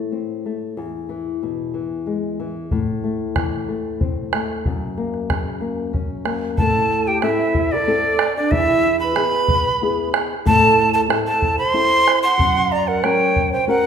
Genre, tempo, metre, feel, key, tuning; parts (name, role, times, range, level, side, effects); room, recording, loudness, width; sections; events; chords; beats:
andean folk, Andean ensemble; 93 BPM; 3/4; straight; A harmonic minor; A4 = 440 Hz
flamenco guitar; accompaniment; 0.0-13.9 s; E2 to A#4; -23 LUFS; left 4 dB
bombo; percussion; 2.7-13.8 s; -24 LUFS; equal
breathy bright quena; melody; 6.6-13.9 s; D5 to C6; -18 LUFS; right 1 dB
large quena; second line; 6.6-13.9 s; D4 to F#5; -22 LUFS; right 5 dB
wet recital hall reverb, RT60 1.6 s; minimal, uncompressed stereo recording; -17 LUFS; side -7 dB against mid
0.0-6.6 A section; 6.6-13.9 B section
0.0 Am; 0.8 E; 2.7 Am; 4.6 F#; 6.6 Am; 8.5 E; 10.4 Am; 12.4 F#
0.13 | 0.77 1.42 2.06 | 2.71 3.35 4.00 | 4.64 5.29 5.93 | 6.58 7.22 7.87 | 8.51 9.16 9.80 | 10.45 11.10 11.74 | 12.39 13.04 13.68